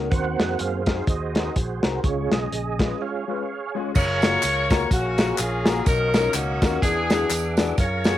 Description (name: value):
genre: uptempo gospel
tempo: 125 BPM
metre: 4/4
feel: swing 58% on 8ths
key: F# major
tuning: A4 = 441 Hz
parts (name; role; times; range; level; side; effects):
- warm concert grand piano; accompaniment; 0.0-8.2 s; B2 to B4; -29 LUFS; left 9 dB; cassette tape
- tonewheel organ; sustained chords; 0.0-8.2 s; G#3 to D6; -30 LUFS; right 7 dB; slow rotary speaker, overdrive, chorus vibrato, cassette tape
- fingered electric bass; bass; 0.0-8.2 s; F#1 to F#2; -28 LUFS; equal; none
- warm soul drum kit; drums; 0.1-8.2 s; crash cymbal, hi-hat, kick drum, snare drum; -22 LUFS; equal; cassette tape
- clear saxophone section; melody; 4.0-8.2 s; A#3 to C#5; -23 LUFS; left 1 dB; cassette tape
- tambourine and handclaps; percussion; 4.0-8.1 s; none; -34 LUFS; left 1 dB; none
room: small room reverb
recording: home recording on cassette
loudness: -20 LUFS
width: side -13 dB against mid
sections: 0.0-4.0 A section; 4.0-8.2 B section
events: tonewheel organ solo 0.0-4.0; break 3.0-4.0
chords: 0.1 G#7/D#; 2.0 C#; 4.0 F#maj9; 5.9 Bmaj9#11; 6.8 E9